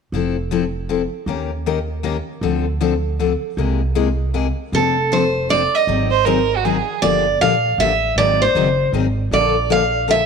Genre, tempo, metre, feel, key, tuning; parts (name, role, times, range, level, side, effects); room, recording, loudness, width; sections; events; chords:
acoustic string swing (jazz manouche); 157 BPM; 3/4; swing 63% on 8ths; A4 = 440 Hz
picked steel-string acoustic guitar; accompaniment; 0.1-10.2 s; C3 to Bb4; -21 LUFS; left 9 dB
upright bass; bass; 0.1-10.2 s; F1 to Eb2; -22 LUFS; right 2 dB
picked steel-string acoustic guitar; melody; 4.7-10.3 s; A4 to F5; -17 LUFS; right 2 dB
dark violin; second line; 6.1-7.0 s; Gb4 to C5; -18 LUFS; right 12 dB
light reverb, studio ambience; 1960s-style stereo with parts hard left and right; -16 LUFS; side -6 dB against mid
0.1-4.7 A section; 4.7-10.3 B section
0.1 Fmaj7; 1.3 Eb7; 2.4 Dm7; 3.6 Caug7; 4.7 F6; 5.9 Ab7; 7.0 Gm7; 8.2 Ab7; 9.3 Bbmaj7